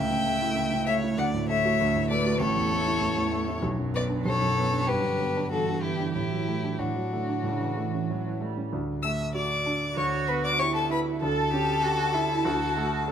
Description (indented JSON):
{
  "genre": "quick classical-period movement for piano quartet",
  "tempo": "96 BPM",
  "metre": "4/4",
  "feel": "straight",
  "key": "D major",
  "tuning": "A4 = 439 Hz",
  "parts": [
    { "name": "rich violin", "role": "melody", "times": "0.0-13.1 s", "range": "F#4 to E6", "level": "-28 LUFS", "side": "left 4 dB", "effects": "none" },
    { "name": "dark cello", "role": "second line", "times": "0.0-13.1 s", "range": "C#3 to A4", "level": "-31 LUFS", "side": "right 7 dB", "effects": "none" },
    { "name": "rich violin", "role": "second line", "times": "0.0-13.1 s", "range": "D4 to E5", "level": "-33 LUFS", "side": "left 1 dB", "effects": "none" },
    { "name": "warm grand piano", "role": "accompaniment", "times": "0.0-13.1 s", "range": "A1 to A4", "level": "-29 LUFS", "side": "equal", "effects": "none" }
  ],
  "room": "wet recital hall reverb, RT60 1.5 s",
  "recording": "close, detailed microphones",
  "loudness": "-24 LUFS",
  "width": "side -8 dB against mid",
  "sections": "0.0-8.7 A section; 8.7-13.1 B section",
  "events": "none",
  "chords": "0.0 A7/C#; 1.2 D; 2.4 A; 3.6 Bm; 4.9 Em7/G; 6.2 D/A; 7.4 A; 8.7 D; 10.0 Em7/D; 11.2 A7/D; 12.5 D"
}